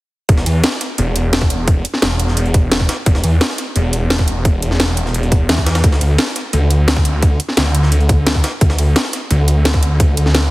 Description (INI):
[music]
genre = dark technical drum and bass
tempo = 173 BPM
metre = 4/4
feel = straight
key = unclear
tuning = A4 = 435 Hz
[part]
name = snarling distorted saw bass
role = bass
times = 0.3-10.5 s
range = E1 to E2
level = -14 LUFS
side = equal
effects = overdrive, sidechain pumping
[part]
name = breakbeat sampler-style drum kit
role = drums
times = 0.3-10.4 s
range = hi-hat, snare drum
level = -25 LUFS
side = equal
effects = high-pass filter on hats, small room reverb, high-pass filter on snare
[part]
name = drum and bass drum kit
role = drums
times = 0.3-10.4 s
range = hi-hat, snare drum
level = -19 LUFS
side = equal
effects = overdrive, small room reverb
[part]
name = electronic kick drum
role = drums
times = 0.3-10.1 s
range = none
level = -13 LUFS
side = equal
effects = overdrive, small room reverb
[sound]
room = little or no reverb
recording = heavily compressed radio sound, multiband compression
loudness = -12 LUFS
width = side -19 dB against mid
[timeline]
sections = 0.3-10.5 A section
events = none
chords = none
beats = | 0.29 0.64 0.98 1.33 | 1.68 2.02 2.37 2.72 | 3.06 3.41 3.76 4.10 | 4.45 4.80 5.14 5.49 | 5.84 6.18 6.53 6.88 | 7.22 7.57 7.92 8.27 | 8.61 8.96 9.31 9.65 | 10.00 10.35